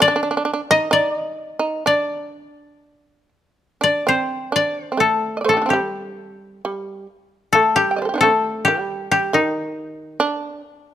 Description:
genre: japanese traditional, Japanese chamber music.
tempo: 61-69 BPM.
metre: 4/4.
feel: rubato.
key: D in sen.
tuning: A4 = 440 Hz.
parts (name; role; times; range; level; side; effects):
koto; melody; 0.0-10.9 s; Eb4 to A5; -17 LUFS; left 3 dB; none.
shamisen; second line; 0.0-10.6 s; Eb3 to G5; -22 LUFS; right 4 dB; none.
room: light reverb.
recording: close, detailed microphones.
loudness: -17 LUFS.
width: side -10 dB against mid.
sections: 0.0-3.8 A section; 3.8-10.9 B section.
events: none.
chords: none.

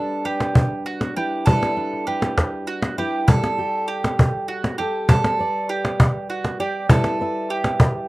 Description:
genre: acoustic folk duo or small band.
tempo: 66 BPM (dotted quarters).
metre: 6/8.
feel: straight.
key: unclear.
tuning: A4 = 439 Hz.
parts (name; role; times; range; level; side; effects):
fingerpicked steel-string acoustic guitar; accompaniment; 0.0-8.1 s; G3 to E5; -27 LUFS; left 1 dB; none.
bowl-back mandolin; arpeggios; 0.0-8.1 s; F#4 to A4; -24 LUFS; right 3 dB; none.
cajon; percussion; 0.4-7.9 s; none; -17 LUFS; equal; none.
room: light reverb.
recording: rough home demo mix.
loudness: -18 LUFS.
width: side -19 dB against mid.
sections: 0.0-3.3 A section; 3.3-8.1 B section.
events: none.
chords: 0.0 G6; 3.3 Gadd9; 6.9 Em/G.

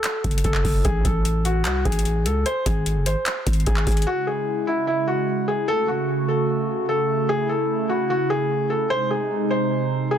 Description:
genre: hip hop, trap.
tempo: 149 BPM.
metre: 4/4.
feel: half-time.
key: C# harmonic minor.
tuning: A4 = 439 Hz.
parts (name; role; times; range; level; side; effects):
felt-muted upright piano; melody; 0.0-10.2 s; E4 to B#4; -23 LUFS; left 1 dB; low-pass filter, digital delay.
booming analog drum machine; drums; 0.0-4.1 s; handclaps, hi-hat, kick drum; -23 LUFS; equal; none.
growling 808-style bass; bass; 0.2-4.1 s; F#1 to C#2; -22 LUFS; equal; none.
hollow soft pad; sustained chords; 4.1-10.2 s; B#2 to F#4; -24 LUFS; right 3 dB; chorus.
room: digital ambience.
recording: dense, heavily limited modern master.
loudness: -20 LUFS.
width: side -9 dB against mid.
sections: 0.0-4.1 A section; 4.1-10.2 B section.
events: none.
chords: 0.0 F#m; 0.8 N.C.; 2.5 G#; 4.1 C#m; 5.7 F#m; 7.3 A; 8.9 G#.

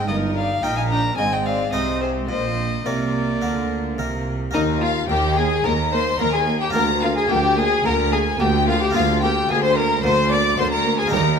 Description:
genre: classical, baroque-style concerto movement with solo episodes.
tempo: 109 BPM.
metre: 4/4.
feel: straight.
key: Eb major.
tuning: A4 = 437 Hz.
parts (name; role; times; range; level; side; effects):
rich chamber violin section; melody; 0.0-11.4 s; F4 to D6; -26 LUFS; left 5 dB; none.
warm violin; melody; 0.0-11.2 s; Eb4 to Bb5; -24 LUFS; left 2 dB; none.
warm chamber violin section; second line; 0.0-11.4 s; Eb4 to G5; -25 LUFS; left 5 dB; none.
dark chamber viola section; accompaniment; 0.0-11.2 s; G3 to Eb4; -27 LUFS; right 1 dB; none.
harpsichord; accompaniment; 0.0-11.4 s; D2 to C5; -28 LUFS; equal; none.
rich chamber cello section; bass; 0.0-11.4 s; D2 to D3; -27 LUFS; right 5 dB; none.
rich chamber double bass section; bass; 0.0-11.4 s; G1 to Eb2; -25 LUFS; right 3 dB; none.
room: wet recital hall reverb, RT60 1.5 s.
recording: none.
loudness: -17 LUFS.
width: side -6 dB against mid.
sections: 0.0-4.5 A section; 4.5-11.4 B section.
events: none.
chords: 0.1 Eb/G; 1.2 Ab; 2.3 Bb; 4.5 Eb5; 6.7 Bb/D; 8.9 Bb7/D.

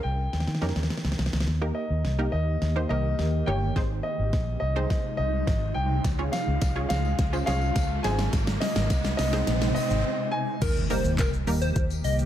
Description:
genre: dance-pop.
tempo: 105 BPM.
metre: 4/4.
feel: straight.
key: unclear.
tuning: A4 = 441 Hz.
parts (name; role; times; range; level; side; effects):
clear baby grand piano; melody; 0.0-10.6 s; Eb5 to Ab5; -32 LUFS; left 1 dB; none.
wide unison pluck; accompaniment; 0.0-12.3 s; G3 to Db5; -33 LUFS; right 2 dB; none.
vintage muted fingered electric bass; bass; 0.0-12.3 s; G1 to Eb3; -27 LUFS; equal; sidechain pumping.
smooth R&B drum kit; drums; 0.3-12.3 s; crash cymbal, handclaps, hi-hat, kick drum, shaker, snare drum; -29 LUFS; equal; none.
granular cloud pad; sustained chords; 2.5-12.3 s; C3 to G4; -33 LUFS; equal; built-in reverb, sidechain pumping.
riser and impact; sound effects; 4.0-12.3 s; none; -35 LUFS; right 1 dB; none.
tambourine; percussion; 6.0-12.2 s; none; -46 LUFS; left 11 dB; none.
plucky unison lead; melody; 10.6-12.2 s; Bb4 to Eb5; -31 LUFS; left 2 dB; sidechain pumping.
room: light reverb, digital ambience.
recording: none.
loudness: -24 LUFS.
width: side -11 dB against mid.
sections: 0.0-1.5 A section; 1.5-10.6 B section; 10.6-12.3 C section.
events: drum fill 0.3-1.5, 1.5-10.0; build-up 1.5-10.6; riser 4.0-10.6; break 10.0-10.6; drop 10.6-12.3; impact 10.6-12.3.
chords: 0.3 Eb7; 1.5 Eb; 3.8 Ab; 6.0 Db; 8.0 Ab; 10.6 Eb.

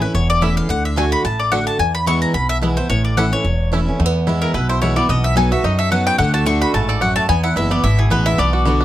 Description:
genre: bluegrass.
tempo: 218 BPM.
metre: 4/4.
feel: swing 54% on 8ths.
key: unclear.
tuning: A4 = 440 Hz.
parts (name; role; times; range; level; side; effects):
mandolin; melody; 0.0-8.8 s; G#4 to C#6; -20 LUFS; left 3 dB; none.
picked steel-string acoustic guitar; accompaniment; 0.0-8.8 s; E2 to F#4; -19 LUFS; equal; none.
upright bass; bass; 0.0-8.8 s; E1 to F#2; -20 LUFS; equal; none.
bluegrass banjo; melody; 0.4-8.8 s; E3 to A4; -24 LUFS; right 5 dB; none.
room: little or no reverb.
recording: close, detailed microphones.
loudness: -14 LUFS.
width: side -13 dB against mid.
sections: 0.0-4.0 A section; 4.0-8.8 B section.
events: none.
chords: 0.0 A; 0.7 D; 1.8 E; 2.9 A; 4.0 E; 5.1 B; 6.2 D; 7.3 E.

